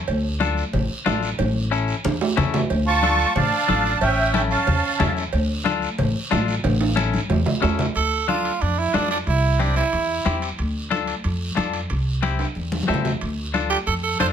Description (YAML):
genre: latin, cumbia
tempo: 183 BPM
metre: 4/4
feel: straight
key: D harmonic minor, D minor from 8.0 s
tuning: A4 = 440 Hz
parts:
  - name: upright bass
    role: bass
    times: 0.1-14.3 s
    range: A1 to F2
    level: -24 LUFS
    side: equal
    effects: none
  - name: congas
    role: percussion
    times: 0.1-14.3 s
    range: none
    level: -27 LUFS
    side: left 3 dB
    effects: none
  - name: cowbell and timbales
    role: percussion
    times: 0.1-14.3 s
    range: none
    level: -28 LUFS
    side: right 7 dB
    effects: none
  - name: guiro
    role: percussion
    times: 0.1-14.3 s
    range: none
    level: -34 LUFS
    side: right 3 dB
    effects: none
  - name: semi-hollow electric guitar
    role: accompaniment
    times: 0.4-14.3 s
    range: C4 to A4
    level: -25 LUFS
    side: left 8 dB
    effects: none
  - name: musette accordion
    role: melody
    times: 2.9-5.1 s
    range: E5 to C#6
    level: -21 LUFS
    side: right 2 dB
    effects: plate reverb
  - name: growling tenor saxophone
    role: second line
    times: 2.9-5.1, 8.0-10.4, 13.7-14.3 s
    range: C#4 to C5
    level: -23 LUFS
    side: right 6 dB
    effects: none
room: moderate studio reverb, RT60 0.8 s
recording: none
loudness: -19 LUFS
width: side -8 dB against mid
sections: 0.0-8.0 A section; 8.0-14.3 B section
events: drum fill 1.4-2.7, 6.6-8.0, 12.4-13.2; tenor saxophone solo 8.0-14.3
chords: 0.1 Dm; 1.4 A; 2.7 Dm; 4.0 A7; 5.3 Dm; 6.6 A; 8.0 Dm; 9.3 C; 10.6 Dm; 11.9 C; 13.2 Dm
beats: | 0.08 0.41 0.73 1.06 | 1.39 1.72 2.05 2.38 | 2.70 3.03 3.36 3.69 | 4.01 4.34 4.67 5.00 | 5.33 5.66 5.98 6.31 | 6.64 6.97 7.30 7.63 | 7.95 8.28 8.61 8.94 | 9.27 9.60 9.93 10.26 | 10.58 10.91 11.24 11.57 | 11.90 12.23 12.56 12.88 | 13.21 13.54 13.87 14.20